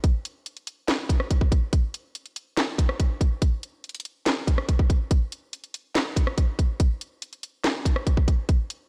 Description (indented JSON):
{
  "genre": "hip hop",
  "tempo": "142 BPM",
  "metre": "4/4",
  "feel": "half-time",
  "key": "none",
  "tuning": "none",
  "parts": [
    { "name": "trap drum kit", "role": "drums", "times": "0.0-8.8 s", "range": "handclaps, hi-hat, kick drum, rim click, snare drum", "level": "-24 LUFS", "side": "equal", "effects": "vintage 12-bit sampler grit" }
  ],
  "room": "light reverb",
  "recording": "none",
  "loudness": "-25 LUFS",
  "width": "mono",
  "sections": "0.0-8.9 A section",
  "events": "none",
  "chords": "none"
}